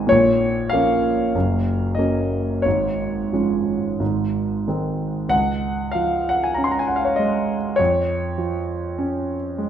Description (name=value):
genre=classical, romantic nocturne for solo piano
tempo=44-51 BPM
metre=4/4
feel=rubato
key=Db major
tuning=A4 = 440 Hz
part: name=clear concert grand piano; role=solo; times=0.0-9.7 s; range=Gb1 to C6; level=-18 LUFS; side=equal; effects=none
room=moderate large studio reverb, RT60 1.3 s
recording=none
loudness=-19 LUFS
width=side -9 dB against mid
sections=0.0-5.3 A section; 5.3-9.7 B section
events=none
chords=0.1 Bbm; 1.3 Gb; 2.6 Db/Ab; 4.0 Ab; 5.3 Db; 7.8 Db/F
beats=| 0.13 1.34 2.65 4.00 | 5.32 6.57 7.79 8.99